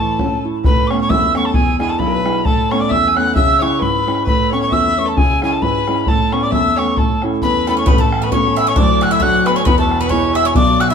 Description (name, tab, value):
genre	celtic folk, Celtic polka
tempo	133 BPM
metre	2/4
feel	swing 57% on 8ths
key	A major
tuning	A4 = 440 Hz
part	mellow tin whistle	melody	0.0-10.9 s	G#5 to F#6	-17 LUFS	left 1 dB	tape echo
part	bright fiddle	second line	0.0-10.9 s	G#4 to G#5	-24 LUFS	left 3 dB	none
part	warm grand piano	accompaniment	0.0-10.9 s	D1 to E4	-17 LUFS	right 1 dB	none
part	bodhran	percussion	0.2-10.9 s	none	-19 LUFS	left 1 dB	none
part	Irish bouzouki	second line	7.7-10.9 s	A3 to F#4	-22 LUFS	right 2 dB	none
room	wet studio reverb, RT60 0.8 s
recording	band playing live in one room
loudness	-13 LUFS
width	side -6 dB against mid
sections	0.6-7.9 A section; 7.9-10.9 B section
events	none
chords	0.0 A; 0.6 Aadd9; 1.5 E7; 2.4 Aadd9; 3.4 C#m; 4.3 Aadd9; 5.2 C#m; 6.1 Aadd9; 7.0 A; 7.9 Aadd9; 8.8 D; 9.7 E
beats	0.19 | 0.64 1.09 | 1.54 2.00 | 2.45 2.90 | 3.35 3.81 | 4.26 4.71 | 5.17 5.62 | 6.07 6.52 | 6.97 7.42 | 7.87 8.32 | 8.77 9.21 | 9.66 10.11 | 10.55